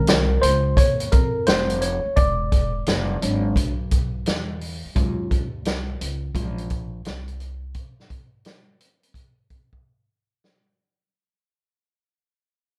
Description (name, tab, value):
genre	hip hop, jazz-hop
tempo	86 BPM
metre	4/4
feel	swing 66% on 16ths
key	unclear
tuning	A4 = 439 Hz
part	tine electric piano	accompaniment	0.0-6.7 s	Eb3 to D5	-26 LUFS	equal	phaser
part	upright bass	bass	0.0-7.7 s	E1 to F2	-29 LUFS	equal	none
part	vintage drum kit	drums	0.1-10.5 s	hi-hat, kick drum, snare drum	-24 LUFS	equal	none
room	light reverb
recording	band playing live in one room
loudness	-22 LUFS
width	mono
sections	0.0-10.5 A section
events	fade-out 0.0-10.5; tine electric piano solo 0.0-10.5; break 7.8-10.5; drum fill 9.8-10.5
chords	0.0 Bbmadd9; 2.2 E13; 5.0 Ebm11; 7.8 N.C.